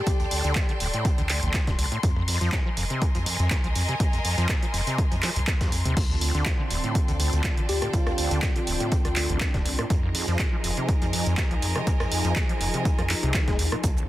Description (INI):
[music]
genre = acid house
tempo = 122 BPM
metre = 4/4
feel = swing 54% on 16ths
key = unclear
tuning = A4 = 441 Hz
[part]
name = soft struck synth lead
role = melody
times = 0.0-0.8, 7.7-8.6 s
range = F4 to G4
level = -33 LUFS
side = left 1 dB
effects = chorus, tape echo
[part]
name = rich chamber string section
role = texture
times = 0.0-14.1 s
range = A4 to C6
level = -33 LUFS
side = equal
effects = sidechain pumping
[part]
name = acid bass, saw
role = riff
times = 0.1-14.0 s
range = D2 to Ab3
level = -30 LUFS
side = equal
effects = overdrive, analog chorus, sidechain pumping, tape echo
[part]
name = breakbeat sampler-style drum kit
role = drums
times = 0.1-14.0 s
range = hi-hat, snare drum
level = -40 LUFS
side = right 3 dB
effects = none
[part]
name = electronic kick drum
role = drums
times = 0.1-13.9 s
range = none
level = -25 LUFS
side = equal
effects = none
[part]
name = punchy analog drum machine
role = drums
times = 0.1-14.1 s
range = crash cymbal, handclaps, hi-hat, rim click, shaker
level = -30 LUFS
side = right 1 dB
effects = overdrive
[part]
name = saturated sub bass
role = bass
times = 0.4-14.1 s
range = D1 to F2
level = -28 LUFS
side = equal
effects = sidechain pumping
[part]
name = lush unison pad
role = sustained chords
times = 6.0-14.1 s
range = D3 to Ab4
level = -33 LUFS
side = equal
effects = chorus, phaser, vintage 12-bit sampler grit, sidechain pumping
[sound]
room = light reverb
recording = dense, heavily limited modern master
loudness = -22 LUFS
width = side -15 dB against mid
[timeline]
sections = 0.0-14.1 A section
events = none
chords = 0.0 D5; 2.0 Fm7; 6.0 Dm7; 9.9 Fm7